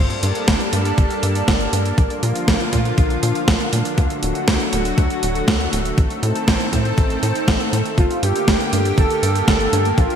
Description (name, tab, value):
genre	italo disco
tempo	120 BPM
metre	4/4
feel	straight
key	G minor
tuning	A4 = 441 Hz
part	lush unison pad	sustained chords	0.0-10.2 s	D3 to A4	-22 LUFS	equal	chorus
part	tight sequencer bass	bass	0.0-10.1 s	D1 to Bb2	-22 LUFS	equal	none
part	clean 12-bit digital drum machine	drums	0.1-10.2 s	hi-hat, snare drum	-22 LUFS	right 1 dB	small room ambience, gated reverb
part	electronic kick drum	drums	0.5-10.1 s	none	-18 LUFS	equal	small room ambience
part	analog synth brass	melody	8.0-10.2 s	F4 to A4	-20 LUFS	right 2 dB	chorus, digital delay
room	moderate lush hall reverb, RT60 2.4 s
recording	bright 1980s-style digital production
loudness	-16 LUFS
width	side -8 dB against mid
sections	0.0-10.2 A section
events	none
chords	0.0 Gmadd9; 2.0 Bb; 4.0 D; 6.0 Adim; 8.0 Gmadd9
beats	0.48 0.98 1.48 | 1.98 2.48 2.98 3.48 | 3.98 4.48 4.98 5.48 | 5.98 6.48 6.98 7.48 | 7.98 8.48 8.98 9.48 | 9.98